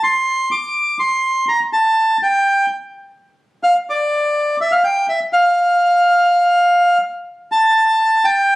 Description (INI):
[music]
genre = tango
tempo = 125 BPM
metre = 4/4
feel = rubato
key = F major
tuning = A4 = 444 Hz
[part]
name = bandoneon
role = solo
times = 0.0-8.6 s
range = D5 to D6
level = -13 LUFS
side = equal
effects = none
[sound]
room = moderate large studio reverb, RT60 1.1 s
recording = recorded on a phone in the room, studio ambience, compression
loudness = -13 LUFS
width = side -18 dB against mid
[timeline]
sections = 0.0-7.5 A section; 7.5-8.6 B section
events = none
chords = none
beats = 0.30 0.78 1.25 | 1.73 2.21 2.68 3.16 | 3.64 4.12 4.59 5.08 | 5.56 6.04 6.53 7.01 | 7.50 7.99 8.47